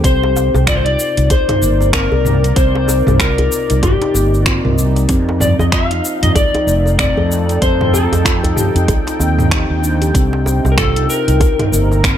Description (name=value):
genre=organic downtempo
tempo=95 BPM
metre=4/4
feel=swing 60% on 16ths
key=C dorian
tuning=A4 = 441 Hz
part: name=electric slide guitar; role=melody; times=0.0-12.2 s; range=G4 to F5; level=-18 LUFS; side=left 3 dB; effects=tape echo
part: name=warm analog pad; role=sustained chords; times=0.0-12.2 s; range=C3 to G5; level=-24 LUFS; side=equal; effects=chorus, tremolo, sidechain pumping
part: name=steel tongue drum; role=arpeggios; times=0.0-12.1 s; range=A3 to Bb4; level=-21 LUFS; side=equal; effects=tape echo
part: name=fretless electric bass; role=bass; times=0.0-12.2 s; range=F1 to F2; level=-15 LUFS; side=equal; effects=ensemble chorus, sidechain pumping
part: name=deep house drum kit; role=drums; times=0.0-12.2 s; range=finger snaps, hi-hat, shaker, toms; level=-19 LUFS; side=right 1 dB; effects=overdrive
part: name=electronic kick drum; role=drums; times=0.0-12.2 s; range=none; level=-17 LUFS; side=equal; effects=overdrive
part: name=djembe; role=percussion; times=0.2-12.0 s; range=none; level=-22 LUFS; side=right 1 dB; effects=none
room=little or no reverb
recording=none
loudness=-11 LUFS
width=side -10 dB against mid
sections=0.0-12.2 A section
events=none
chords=0.0 Cm7; 5.1 F7; 10.1 Cm7